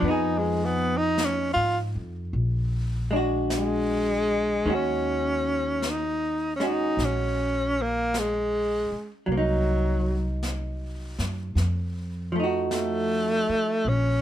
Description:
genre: jazz ballad.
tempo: 52 BPM.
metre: 4/4.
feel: swing 68% on 8ths.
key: Eb minor.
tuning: A4 = 442 Hz.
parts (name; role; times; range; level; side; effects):
breathy tenor saxophone; melody; 0.0-14.2 s; Gb3 to F4; -25 LUFS; equal; none.
vintage hollow-body jazz guitar; accompaniment; 0.0-13.9 s; Eb3 to Ab4; -28 LUFS; equal; none.
upright bass; bass; 0.0-14.2 s; Bb1 to Ab2; -29 LUFS; equal; none.
jazz brush drum kit; drums; 0.0-14.2 s; brushed snare drum, hi-hat, snare drum; -37 LUFS; left 1 dB; none.
room: light reverb.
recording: close, detailed microphones.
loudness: -23 LUFS.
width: side -11 dB against mid.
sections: 0.0-4.7 A section; 4.7-14.2 B section.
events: tenor saxophone solo 0.0-4.7.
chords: 0.0 Fm7b5; 2.3 Bb7b13; 4.7 Ebm7; 9.3 Cm7b5; 11.6 F7b9.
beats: | 0.02 1.17 2.33 3.50 | 4.67 5.82 6.98 8.13 | 9.28 10.43 11.57 12.71 | 13.86.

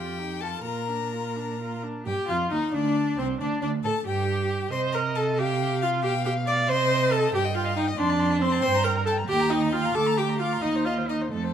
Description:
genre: quick classical-period movement for string quartet.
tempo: 84-93 BPM (dotted quarters).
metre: 6/8.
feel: rubato.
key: unclear.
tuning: A4 = 440 Hz.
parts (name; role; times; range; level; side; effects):
clear violin; melody; 0.0-11.5 s; A4 to D6; -32 LUFS; left 12 dB; none.
warm violin; second line; 0.0-11.5 s; C4 to D6; -31 LUFS; left 4 dB; none.
rich viola; accompaniment; 0.0-11.5 s; A3 to D5; -26 LUFS; right 1 dB; none.
rich cello; bass; 0.0-11.5 s; C2 to C3; -29 LUFS; right 5 dB; none.
room: light reverb.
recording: close, detailed microphones.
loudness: -23 LUFS.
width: side -9 dB against mid.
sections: 0.0-2.1 A section; 2.1-11.5 B section.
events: none.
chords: 0.0 F9; 0.7 Bb; 2.1 G5; 3.4 D5; 4.1 N.C.; 4.7 Cm; 6.0 G7/B; 6.7 Cm; 7.3 Eb/G; 8.0 F; 8.6 Gm; 9.3 Eb; 9.9 Bb/D; 10.6 Cm/Eb.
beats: | 0.65 1.36 | 2.07 2.75 | 3.41 4.07 | 4.73 5.39 | 6.04 6.69 | 7.34 7.99 | 8.64 9.29 | 9.95 10.63 | 11.33.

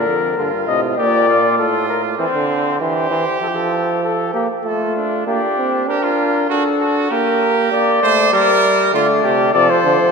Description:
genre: classical, imitative canzona for brass ensemble.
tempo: 98 BPM.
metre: 3/4.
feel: straight.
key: G minor from 5.3 s.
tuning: A4 = 436 Hz.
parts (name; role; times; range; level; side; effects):
dark trumpet; melody; 0.0-10.1 s; F4 to Eb5; -17 LUFS; left 6 dB; none.
clear trumpet; second line; 0.0-10.1 s; C4 to C5; -20 LUFS; right 6 dB; none.
clear trombone; accompaniment; 0.0-10.1 s; A2 to D4; -19 LUFS; right 4 dB; none.
warm euphonium; bass; 0.0-1.6, 8.9-10.0 s; F2 to D3; -23 LUFS; right 3 dB; none.
room: wet church reverb, RT60 3.6 s.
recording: none.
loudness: -14 LUFS.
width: side -5 dB against mid.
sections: 0.0-5.3 A section; 5.3-10.1 B section.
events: none.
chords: 0.0 Bb; 1.6 F/A; 2.8 C/E; 3.4 F; 4.6 F/A; 5.3 Gm/Bb; 6.5 D; 7.1 Gm/Bb; 8.3 Gm; 8.9 Dm.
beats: 0.37 0.98 | 1.58 2.19 2.80 | 3.41 4.03 4.65 | 5.27 5.88 6.50 | 7.11 7.72 8.34 | 8.94 9.55.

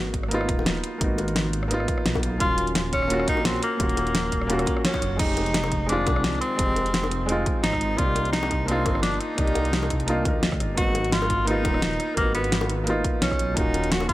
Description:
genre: liquid drum and bass.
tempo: 172 BPM.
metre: 4/4.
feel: swing 54% on 16ths.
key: unclear.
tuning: A4 = 439 Hz.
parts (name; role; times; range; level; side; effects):
felt-muted upright piano; accompaniment; 0.0-14.1 s; Eb3 to D5; -28 LUFS; equal; none.
dark detuned saw bass; bass; 0.0-14.1 s; Eb1 to D2; -28 LUFS; equal; none.
electronic kick drum; drums; 0.1-14.1 s; none; -28 LUFS; equal; none.
pop drum kit; drums; 0.1-14.1 s; crash cymbal, hi-hat, rim click, snare drum; -27 LUFS; equal; none.
bongos; percussion; 0.6-14.1 s; none; -35 LUFS; left 4 dB; none.
breathy tenor saxophone; melody; 2.4-14.1 s; Bb3 to Gb4; -26 LUFS; equal; digital delay.
room: light reverb.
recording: none.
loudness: -21 LUFS.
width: side -16 dB against mid.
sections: 0.0-5.2 A section; 5.2-14.1 A section.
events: drop 0.0-5.2, 5.2-14.1; band accent 4.8.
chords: 0.0 Abm9; 2.4 Ebm9; 5.2 Fm9; 8.0 Cm9; 10.8 Abm9; 13.6 Ebm9.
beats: 0.31 0.66 | 1.01 1.36 1.71 2.06 | 2.40 2.75 3.10 3.45 | 3.80 4.15 4.50 4.85 | 5.20 5.54 5.89 6.24 | 6.59 6.94 7.29 7.64 | 7.99 8.34 8.68 9.03 | 9.38 9.73 10.08 10.43 | 10.78 11.12 11.47 11.82 | 12.17 12.52 12.87 13.22 | 13.57 13.92.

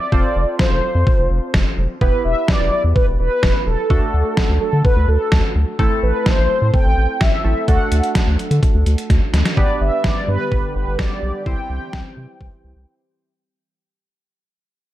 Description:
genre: synth-pop.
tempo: 127 BPM.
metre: 4/4.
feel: straight.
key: G major.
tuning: A4 = 440 Hz.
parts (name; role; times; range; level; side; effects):
mellow synth brass; melody; 0.0-13.1 s; A4 to G5; -21 LUFS; equal; chorus, tape echo.
warm analog keys; accompaniment; 0.0-13.3 s; A3 to C5; -25 LUFS; right 1 dB; chorus.
round analog bass; bass; 0.1-12.9 s; E1 to D3; -17 LUFS; equal; none.
detuned 8-bit digital drum machine; drums; 0.1-12.5 s; hi-hat, kick drum, snare drum; -18 LUFS; equal; none.
sweeping resonant pad; sustained chords; 10.0-13.3 s; D3 to G4; -30 LUFS; equal; chorus.
room: light reverb, digital ambience.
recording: dark, warm production.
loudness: -15 LUFS.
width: side -14 dB against mid.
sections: 0.0-9.6 A section; 9.6-13.4 B section.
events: drum fill 9.1-9.6; fade-out 9.6-13.4; break 12.9-13.4.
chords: 0.1 F; 2.0 Em; 3.9 D; 5.8 Am; 7.7 D; 9.6 G; 11.5 C.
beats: | 0.12 0.59 1.07 1.54 | 2.01 2.48 2.96 3.43 | 3.90 4.37 4.85 5.32 | 5.79 6.26 6.74 7.21 | 7.68 8.15 8.63 9.10 | 9.57 10.04 10.52 10.99 | 11.46 11.93 12.41 12.88.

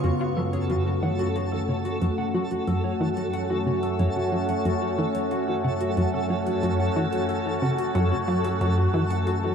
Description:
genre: ambient, sequencer-driven space music.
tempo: 91 BPM.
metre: 4/4.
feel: straight.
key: F# minor.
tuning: A4 = 440 Hz.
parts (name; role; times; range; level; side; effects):
evolving wavetable pad; sustained chords; 0.0-9.5 s; A3 to F#4; -27 LUFS; equal; phaser, built-in reverb.
mellow electric guitar; arpeggios; 0.0-9.5 s; F#4 to F#5; -30 LUFS; left 1 dB; auto-pan, ping-pong delay.
plucky analog bass; riff; 0.0-9.0 s; F#2 to F#3; -27 LUFS; equal; ping-pong delay.
fat analog bass; bass; 0.0-9.5 s; F#2; -31 LUFS; equal; none.
electronic hi-hat and woodblock; percussion; 0.0-9.4 s; none; -52 LUFS; right 4 dB; ping-pong delay.
twinkling granular texture; texture; 0.0-9.5 s; A4; -35 LUFS; equal; built-in reverb.
room: wet cathedral reverb, RT60 4.7 s.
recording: in a vast, echoing space.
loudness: -22 LUFS.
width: side -7 dB against mid.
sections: 0.0-9.5 A section.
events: fade-in on drum 0.0-9.5; filter sweep on analog synth bass 0.0-9.5.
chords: 0.0 F#m.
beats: | 0.04 0.70 1.36 2.02 | 2.67 3.33 3.99 4.65 | 5.31 5.97 6.63 7.29 | 7.95 8.61 9.27.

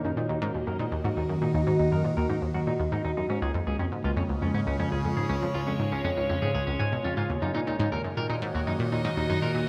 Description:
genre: ambient, sequencer-driven space music.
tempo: 120 BPM.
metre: 4/4.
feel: straight.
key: Eb minor.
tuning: A4 = 441 Hz.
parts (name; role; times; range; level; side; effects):
evolving wavetable pad; sustained chords; 0.0-9.7 s; Db3 to Eb5; -31 LUFS; equal; phaser, built-in reverb.
electric guitar at the edge of break-up; arpeggios; 0.0-9.5 s; Db4 to Ab5; -36 LUFS; equal; low-pass filter, tape echo.
analog pluck; riff; 0.0-9.7 s; Db2 to Cb3; -32 LUFS; equal; chorus, tape echo.
room: wet plate reverb, RT60 3.8 s.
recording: none.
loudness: -28 LUFS.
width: mono.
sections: 0.0-9.7 A section.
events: filter sweep on clean electric guitar 0.0-9.7.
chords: 0.0 Ebm; 3.3 Db; 7.3 Ebm.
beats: 0.30 0.80 | 1.30 1.80 2.30 2.80 | 3.30 3.80 4.30 4.80 | 5.30 5.80 6.30 6.80 | 7.30 7.80 8.30 8.80 | 9.30.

